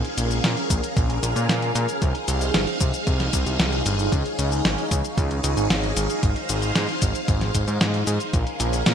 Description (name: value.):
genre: synthwave.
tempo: 114 BPM.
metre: 4/4.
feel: straight.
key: unclear.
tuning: A4 = 442 Hz.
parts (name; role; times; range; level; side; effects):
string machine, full ensemble; sustained chords; 0.0-8.9 s; Db4 to F5; -26 LUFS; right 1 dB; phaser, ensemble chorus, sidechain pumping.
fat analog bass; bass; 0.0-8.9 s; G1 to Bb2; -24 LUFS; equal; none.
clean 12-bit digital drum machine; drums; 0.0-8.9 s; hi-hat, shaker, snare drum; -25 LUFS; left 1 dB; gated reverb.
electronic kick drum; drums; 0.7-8.4 s; none; -23 LUFS; equal; none.
room: light reverb.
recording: bright 1980s-style digital production.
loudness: -20 LUFS.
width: side -8 dB against mid.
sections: 0.0-8.9 A section.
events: none.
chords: 0.0 Bbm7; 2.0 Fm7; 4.1 Dbadd9; 6.2 Ab6; 8.3 Bbm7.